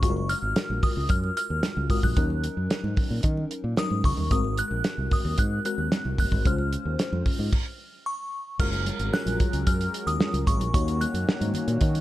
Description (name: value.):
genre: early-eighties boogie funk.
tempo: 112 BPM.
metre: 4/4.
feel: straight.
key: unclear.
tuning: A4 = 439 Hz.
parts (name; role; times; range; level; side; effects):
glassy synth bell; melody; 0.0-12.0 s; Db6 to Gb6; -31 LUFS; equal; chorus, slapback echo.
FM electric piano with soft pad layer; accompaniment; 0.0-12.0 s; Gb3 to Db5; -33 LUFS; left 3 dB; chorus.
fingered electric bass; bass; 0.0-12.0 s; Gb1 to Eb3; -28 LUFS; equal; none.
damped 70s drum kit; drums; 0.0-12.0 s; crash cymbal, hi-hat, kick drum, snare drum; -26 LUFS; equal; none.
congas; percussion; 0.2-12.0 s; none; -36 LUFS; right 3 dB; none.
brassy analog pad; sustained chords; 8.6-12.0 s; Eb3 to Bb4; -34 LUFS; left 1 dB; chorus.
room: studio reverb.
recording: dark, warm production.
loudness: -23 LUFS.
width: side -15 dB against mid.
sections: 0.0-8.6 A section; 8.6-12.0 B section.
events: stop 7.5-8.6.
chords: 0.0 Gbmaj9; 2.2 Ebm7; 4.3 Ab9; 6.5 Dbmaj7; 8.6 Gbmaj9; 10.7 Ebm7.